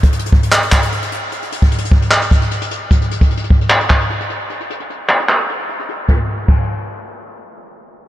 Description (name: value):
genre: hip hop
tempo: 151 BPM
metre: 4/4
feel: half-time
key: none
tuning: none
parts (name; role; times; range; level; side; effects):
- jazz brush drum kit; drums; 0.0-6.6 s; crash cymbal, handclaps, hi-hat, kick drum, snare drum; -13 LUFS; equal; none
room: light reverb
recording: low-pass filter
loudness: -13 LUFS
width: side -14 dB against mid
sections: 0.0-6.1 A section; 6.1-8.1 B section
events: none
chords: none